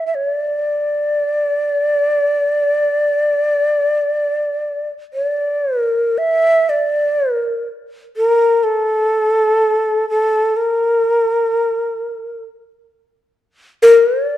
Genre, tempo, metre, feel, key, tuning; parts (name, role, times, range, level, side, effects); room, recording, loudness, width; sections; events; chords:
japanese traditional, Japanese chamber music; free time; A4 = 439 Hz
mellow shakuhachi; solo; 0.0-14.4 s; A4 to E5; -14 LUFS; equal
moderate recital hall reverb, RT60 1.5 s; dark, warm production; -14 LUFS; side -13 dB against mid
0.0-6.2 A section; 6.2-14.4 B section